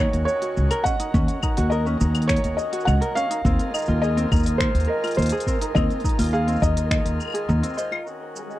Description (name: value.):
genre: folktronica.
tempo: 104 BPM.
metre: 4/4.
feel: straight.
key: Eb dorian.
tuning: A4 = 439 Hz.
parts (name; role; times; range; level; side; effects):
felt-muted upright piano; melody; 0.0-7.7 s; Bb4 to Gb5; -27 LUFS; equal; tape echo.
small celesta; second line; 0.0-8.1 s; Eb5; -34 LUFS; right 1 dB; tape echo.
accordion; sustained chords; 0.0-8.6 s; Eb3 to Gb4; -35 LUFS; left 2 dB; stereo widening, low-pass filter.
ukulele; arpeggios; 0.0-8.0 s; C4 to C5; -30 LUFS; equal; none.
upright bass; bass; 0.0-7.6 s; Db2 to Eb2; -21 LUFS; equal; none.
flickering grainy texture; texture; 0.0-8.6 s; Ab4 to Bb5; -37 LUFS; right 3 dB; built-in reverb.
organic electronic drum kit; drums; 0.1-8.6 s; claves, finger snaps, hi-hat, shaker; -31 LUFS; left 2 dB; none.
electronic kick drum; drums; 0.9-7.0 s; none; -24 LUFS; equal; none.
room: little or no reverb.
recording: dry, close 1970s-style studio recording.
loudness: -19 LUFS.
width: side -15 dB against mid.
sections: 0.0-8.1 A section.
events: none.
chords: 0.0 Ebm7; 3.5 Fm7/Eb; 8.1 Ebm7.